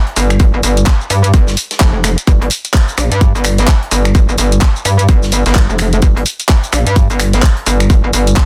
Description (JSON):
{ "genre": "bass house", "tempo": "128 BPM", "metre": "4/4", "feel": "swing 59% on 16ths", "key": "G minor", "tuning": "A4 = 439 Hz", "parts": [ { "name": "modern studio drum kit", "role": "drums", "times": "0.1-8.5 s", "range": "hi-hat, snare drum", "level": "-32 LUFS", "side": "equal", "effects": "none" }, { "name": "metallic wobble bass", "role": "bass", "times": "0.2-8.4 s", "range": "F1 to G2", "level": "-14 LUFS", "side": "equal", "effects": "chorus, sidechain pumping" }, { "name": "garage drum kit", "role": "drums", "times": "0.2-8.5 s", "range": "finger snaps, handclaps, hi-hat, shaker", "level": "-20 LUFS", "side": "equal", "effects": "overdrive" }, { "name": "electronic kick drum", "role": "drums", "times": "0.4-8.5 s", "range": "none", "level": "-12 LUFS", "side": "equal", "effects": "overdrive" } ], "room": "digital ambience", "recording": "dense, heavily limited modern master", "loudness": "-12 LUFS", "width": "mono", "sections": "0.0-8.5 A section", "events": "none", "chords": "none" }